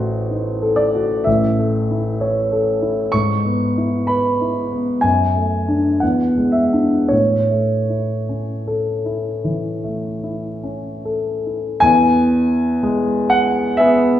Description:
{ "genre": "classical, romantic nocturne for solo piano", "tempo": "48-66 BPM", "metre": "4/4", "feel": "rubato", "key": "A major", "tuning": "A4 = 440 Hz", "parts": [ { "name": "clear concert grand piano", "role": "solo", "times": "0.0-14.2 s", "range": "A1 to C#6", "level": "-16 LUFS", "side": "equal", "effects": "none" } ], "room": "wet recital hall reverb, RT60 1.5 s", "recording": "heard from further back in the room", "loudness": "-16 LUFS", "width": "side -11 dB against mid", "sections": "0.0-11.8 A section; 11.8-14.2 B section", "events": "none", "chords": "0.0 Adim7; 1.3 A; 3.1 E/G#; 5.0 D/F#; 6.0 E7; 7.1 A; 11.8 E" }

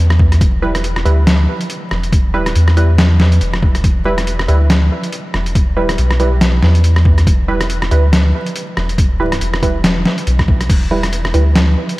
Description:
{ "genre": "deep dubstep", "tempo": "140 BPM", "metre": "4/4", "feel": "swing 57% on 16ths, half-time", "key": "E minor", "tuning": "A4 = 441 Hz", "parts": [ { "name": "soft dub sub bass", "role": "bass", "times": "0.0-11.8 s", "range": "E1 to E2", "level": "-13 LUFS", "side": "equal", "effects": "none" }, { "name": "trip hop sampler-style drum kit", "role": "drums", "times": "0.1-12.0 s", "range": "crash cymbal, hi-hat, rim click, snare drum", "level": "-18 LUFS", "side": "equal", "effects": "overdrive, small room ambience" }, { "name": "electronic kick drum", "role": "drums", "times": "0.2-10.8 s", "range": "none", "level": "-13 LUFS", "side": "equal", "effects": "overdrive, small room ambience" }, { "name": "filtered dub chord stab", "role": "stabs", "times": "0.6-11.5 s", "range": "G3 to B4", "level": "-21 LUFS", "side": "right 2 dB", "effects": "chorus, dub echo" } ], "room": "moderate cathedral reverb, RT60 4.6 s", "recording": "dreamy mix soaked in reverb, vinyl crackle", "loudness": "-11 LUFS", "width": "side -19 dB against mid", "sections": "0.0-12.0 A section", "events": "none", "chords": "0.0 Em" }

